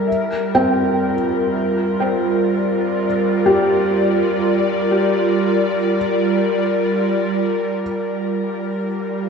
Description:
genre	ambient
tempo	free time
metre	none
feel	none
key	unclear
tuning	A4 = 437 Hz
part	airy breathy pad	sustained chords	0.0-9.3 s	G3 to F5	-17 LUFS	equal	chorus, shimmer reverb
part	felt-muted upright piano	arpeggios	0.0-7.8 s	C4 to G5	-21 LUFS	left 1 dB	analog delay, shimmer reverb
room	wet plate reverb, RT60 2.7 s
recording	echo-heavy mix, cassette tape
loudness	-16 LUFS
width	side -5 dB against mid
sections	0.0-7.8 A section; 7.8-9.3 B section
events	filter sweep on analog synth pad 0.0-7.8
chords	0.1 Bb/G; 7.8 Gm7

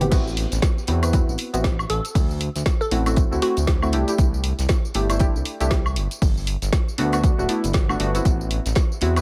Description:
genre	deep house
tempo	118 BPM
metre	4/4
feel	swing 59% on 16ths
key	A dorian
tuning	A4 = 440 Hz
part	deep mellow chord stab	stabs	0.0-9.2 s	A3 to C5	-28 LUFS	equal	chorus, dub echo
part	smooth gliding synth bass	bass	0.0-9.2 s	D1 to E2	-26 LUFS	equal	tube saturation, sidechain pumping
part	deep house drum kit	drums	0.0-9.2 s	crash cymbal, hi-hat, snare drum, tambourine, woodblock	-31 LUFS	equal	none
part	damped 70s drum kit	drums	0.1-9.2 s	hi-hat, snare drum	-42 LUFS	equal	none
part	electronic kick drum	drums	0.1-8.9 s	none	-22 LUFS	equal	none
part	glassy wavetable pluck	melody	1.9-3.9 s	F#4 to A4	-31 LUFS	equal	chorus, tape echo
room	little or no reverb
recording	none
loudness	-21 LUFS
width	mono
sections	0.1-9.2 A section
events	drop 0.1-9.2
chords	0.1 Am69; 2.2 D9; 3.9 C6; 6.0 Gmaj7; 8.3 Am69

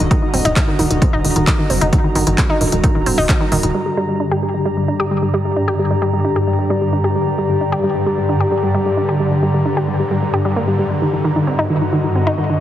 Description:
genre	driving peak-time techno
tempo	132 BPM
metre	4/4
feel	straight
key	G harmonic minor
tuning	A4 = 440 Hz
part	analog pluck	riff	0.0-12.5 s	Eb3 to G4	-20 LUFS	equal	chorus, tube saturation, sidechain pumping, tape echo
part	tight sequencer bass	bass	0.0-3.7 s	Eb1 to Ab1	-19 LUFS	equal	sidechain pumping
part	swarming drone	drone	0.0-12.6 s	G2 to D3	-19 LUFS	equal	built-in reverb, sidechain pumping
part	techno drum kit	drums	0.0-3.7 s	handclaps, hi-hat	-22 LUFS	equal	low-pass filter on snare, sidechain pumping on hats, low-pass filter on hats
part	warbly tape-like pad	texture	0.0-12.6 s	Gb4 to Bb5	-22 LUFS	left 1 dB	chorus, built-in reverb, sidechain pumping
part	electronic kick drum	drums	0.1-3.4 s	none	-16 LUFS	equal	none
room	moderate lush hall reverb, RT60 1.9 s, digital ambience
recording	heavily compressed radio sound, multiband compression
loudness	-14 LUFS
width	side -12 dB against mid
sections	0.0-3.7 A section; 3.7-12.6 B section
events	none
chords	0.0 Ebm; 3.7 Gm; 11.0 Ebm

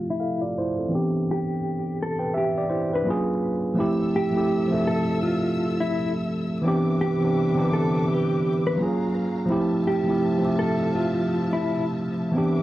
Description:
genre	hip hop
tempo	84 BPM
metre	4/4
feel	swing 61% on 16ths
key	unclear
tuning	A4 = 440 Hz
part	mellow electric guitar	melody	0.0-11.8 s	E4 to B4	-28 LUFS	equal	tremolo, low-pass filter, analog delay
part	tine electric piano	accompaniment	0.0-12.6 s	D3 to G5	-23 LUFS	equal	overdrive, low-pass filter
part	warm studio string section	sustained chords	3.8-12.6 s	C3 to E6	-34 LUFS	left 2 dB	low-pass filter
room	wet studio reverb, RT60 0.5 s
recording	dark, warm production, vinyl crackle, low-pass filter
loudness	-21 LUFS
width	side -15 dB against mid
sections	0.0-3.8 A section; 3.8-12.6 B section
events	filter sweep 0.0-3.8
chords	0.0 Fmaj7; 0.9 Cmaj9; 3.1 F#maj7; 3.8 Fmaj7; 6.6 Cmaj9; 8.8 F#maj7; 9.5 Fmaj7

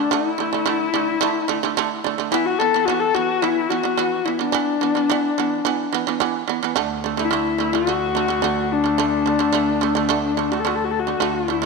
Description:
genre	mongolian traditional, Mongolian folk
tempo	108 BPM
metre	4/4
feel	straight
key	D gong mode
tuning	A4 = 440 Hz
part	dark horsehead fiddle	melody	0.0-11.7 s	D4 to A4	-20 LUFS	left 8 dB	none
part	shamisen	arpeggios	0.0-11.7 s	D3 to B3	-22 LUFS	right 14 dB	none
part	rich cello	drone	6.8-11.7 s	D2	-28 LUFS	right 1 dB	stereo widening
room	moderate plate reverb, RT60 2.4 s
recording	1960s-style stereo with parts hard left and right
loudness	-18 LUFS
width	side -3 dB against mid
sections	0.0-6.8 A section; 6.8-11.7 B section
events	none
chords	0.0 D5; 2.3 E5; 6.8 D5

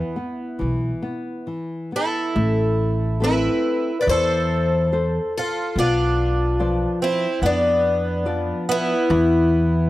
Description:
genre	fado-style ballad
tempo	71 BPM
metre	4/4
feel	rubato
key	A minor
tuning	A4 = 440 Hz
part	picked twelve-string acoustic guitar	melody	0.0-9.9 s	D4 to D5	-23 LUFS	left 2 dB	none
part	fingerpicked twelve-string acoustic guitar	second line	0.0-9.9 s	B3 to B4	-25 LUFS	right 4 dB	none
part	nylon-string guitar	accompaniment	0.0-9.9 s	E3 to D5	-26 LUFS	left 2 dB	none
part	upright bass	bass	0.6-9.9 s	A1 to F2	-23 LUFS	equal	none
room	small room ambience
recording	dry, close 1970s-style studio recording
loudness	-18 LUFS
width	side -16 dB against mid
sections	0.0-2.4 A section; 2.4-9.9 B section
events	none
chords	0.0 E5; 2.4 Amadd9; 5.8 Bdim; 9.1 E5

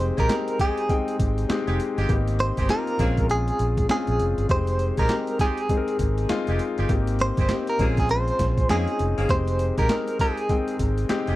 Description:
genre	R&B, new jack swing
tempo	100 BPM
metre	4/4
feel	swing 61% on 16ths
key	F minor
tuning	A4 = 440 Hz
part	direct-recorded clean electric guitar	melody	0.0-10.8 s	Ab4 to C5	-26 LUFS	right 1 dB	tremolo
part	warm concert grand piano	accompaniment	0.0-11.4 s	Ab3 to G5	-27 LUFS	left 4 dB	none
part	vintage muted fingered electric bass	bass	0.0-11.4 s	F1 to F2	-25 LUFS	right 1 dB	none
part	boom bap sampler-style drum kit	drums	0.0-11.4 s	handclaps, hi-hat, kick drum, snare drum	-26 LUFS	right 1 dB	overdrive
part	warm horn section	stabs	0.2-11.4 s	Ab3 to Ab4	-34 LUFS	right 2 dB	none
room	digital ambience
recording	dry, close 1970s-style studio recording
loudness	-21 LUFS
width	side -16 dB against mid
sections	0.0-11.4 A section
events	none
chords	0.0 Fm9; 2.1 Abmaj7; 3.0 Bbm9; 4.5 Fm9; 6.9 Abmaj7; 7.8 Bbm9; 9.3 Fm9

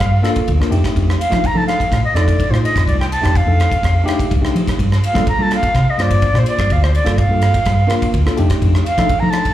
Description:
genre	electric jazz fusion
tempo	126 BPM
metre	4/4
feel	straight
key	unclear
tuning	A4 = 440 Hz
part	bright reedy silver concert flute	melody	0.0-9.5 s	C5 to Bb5	-19 LUFS	right 1 dB	slapback echo
part	tine electric piano	accompaniment	0.0-9.5 s	A3 to C5	-22 LUFS	equal	medium stereo tremolo, slapback echo
part	woody fretless electric bass	bass	0.0-9.4 s	C2 to G3	-16 LUFS	equal	none
part	modern studio drum kit	drums	0.0-9.5 s	kick drum, ride cymbal, rim click	-20 LUFS	equal	none
room	studio ambience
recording	live gig heard through the venue's PA, club reverb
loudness	-13 LUFS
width	side -13 dB against mid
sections	0.0-9.5 A section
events	none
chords	0.0 Gm9; 0.7 F13; 4.8 Gm9; 8.4 F13

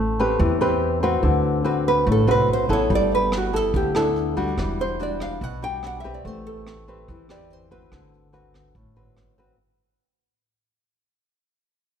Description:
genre	bossa nova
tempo	144 BPM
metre	4/4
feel	straight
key	unclear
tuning	A4 = 440 Hz
part	nylon-string guitar	melody	0.0-8.1 s	D4 to G5	-24 LUFS	right 3 dB	none
part	nylon-string guitar	accompaniment	0.0-9.6 s	A2 to B4	-22 LUFS	left 2 dB	none
part	upright bass	bass	0.0-9.5 s	E1 to E2	-27 LUFS	right 1 dB	none
part	vintage brush drum kit	drums	2.9-9.5 s	hi-hat, kick drum, rim click	-31 LUFS	right 1 dB	none
room	moderate concert hall reverb, RT60 1.8 s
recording	recorded in a church or concert hall, faint mains hum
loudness	-19 LUFS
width	side -8 dB against mid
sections	0.0-9.6 A section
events	fade-out 0.0-9.6; nylon-string guitar solo 0.0-9.6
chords	0.0 Am9; 1.2 D13; 2.9 G69; 4.6 Em9; 6.2 Am9; 7.9 D6

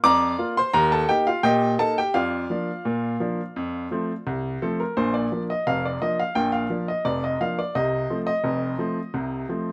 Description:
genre	ragtime piano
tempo	86 BPM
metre	2/4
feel	straight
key	Bb major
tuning	A4 = 441 Hz
part	clear upright piano	solo	0.0-9.7 s	F1 to D6	-24 LUFS	equal	none
room	light reverb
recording	none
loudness	-24 LUFS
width	mono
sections	0.0-5.0 A section; 5.0-9.7 B section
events	none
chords	0.0 Bb; 0.7 Eb; 2.1 Bb/F; 3.6 F; 5.0 Bb; 7.8 F7

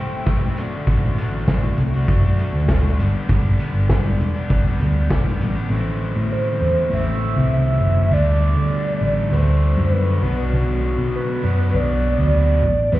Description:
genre	indie rock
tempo	100 BPM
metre	4/4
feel	straight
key	D mixolydian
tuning	A4 = 439 Hz
part	overdriven synth lead	melody	0.0-0.6, 6.3-13.0 s	B4 to G5	-23 LUFS	right 2 dB	phaser, plate reverb, tape echo
part	distorted electric guitar	riff	0.0-13.0 s	G2 to G4	-24 LUFS	left 3 dB	distortion
part	vintage drum kit	drums	0.3-5.5 s	hi-hat, kick drum, rim click, snare drum	-21 LUFS	equal	none
part	hollow-body short-scale picked electric bass	bass	0.9-13.0 s	E1 to D3	-18 LUFS	equal	none
room	light reverb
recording	heard muffled through a wall, stone room reverb, EQ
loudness	-16 LUFS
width	side -16 dB against mid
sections	0.0-5.7 A section; 5.7-13.0 B section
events	none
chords	0.0 Am7; 0.6 D/A; 3.0 G; 5.7 Am; 8.1 Dsus4; 10.2 Bm

